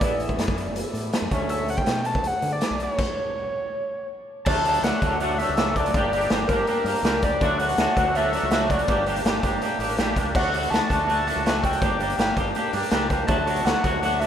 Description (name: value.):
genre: indie rock.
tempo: 163 BPM.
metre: 4/4.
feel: straight.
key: D major.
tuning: A4 = 440 Hz.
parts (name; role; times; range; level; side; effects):
overdriven synth lead; melody; 0.0-14.3 s; Bb4 to A5; -26 LUFS; equal; distortion, tape echo.
twangy electric guitar; riff; 0.0-14.3 s; E3 to G4; -25 LUFS; equal; double-tracked left and right.
growling fingered electric bass; bass; 0.0-14.2 s; F#1 to D3; -31 LUFS; equal; overdrive.
raw garage drum kit; drums; 0.0-14.3 s; crash cymbal, hi-hat, kick drum, snare drum; -25 LUFS; equal; none.
room: light reverb.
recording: rough home demo mix.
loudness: -21 LUFS.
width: side -9 dB against mid.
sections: 0.0-4.5 A section; 4.5-14.3 B section.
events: stop 3.0-4.5.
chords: 0.0 Asus2; 1.3 Dmaj7; 3.0 N.C.; 4.5 D; 5.9 Gm; 7.4 D; 8.9 Gm; 10.4 D; 11.8 Gm; 13.3 D.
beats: | 0.02 0.39 0.76 1.13 | 1.50 1.87 2.24 2.62 | 2.98 3.35 3.73 4.09 | 4.46 4.83 5.20 5.57 | 5.94 6.31 6.68 7.04 | 7.41 7.78 8.15 8.52 | 8.88 9.25 9.62 9.99 | 10.35 10.72 11.09 11.46 | 11.82 12.19 12.56 12.93 | 13.29 13.66 14.03.